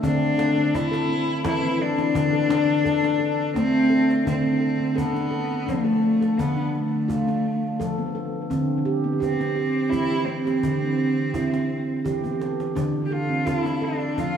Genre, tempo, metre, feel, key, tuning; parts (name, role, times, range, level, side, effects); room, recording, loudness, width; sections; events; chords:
world meditative, meditative tuned percussion; 85 BPM; 3/4; swing 53% on 16ths; D dorian; A4 = 443 Hz
warm cello; melody; 0.0-14.4 s; A3 to G4; -23 LUFS; equal; analog delay
handpan; arpeggios; 0.0-14.4 s; D3 to A4; -24 LUFS; equal; analog delay
cajon; percussion; 0.0-14.4 s; -35 LUFS; right 1 dB
wet echo chamber reverb, RT60 2.5 s; echo-heavy mix; -21 LUFS; side -8 dB against mid
0.0-4.3 A section; 4.3-14.4 B section
drum fill 12.2-12.8
0.0 Am/D; 2.1 D5; 4.3 Dm; 8.5 C/D; 12.8 Dm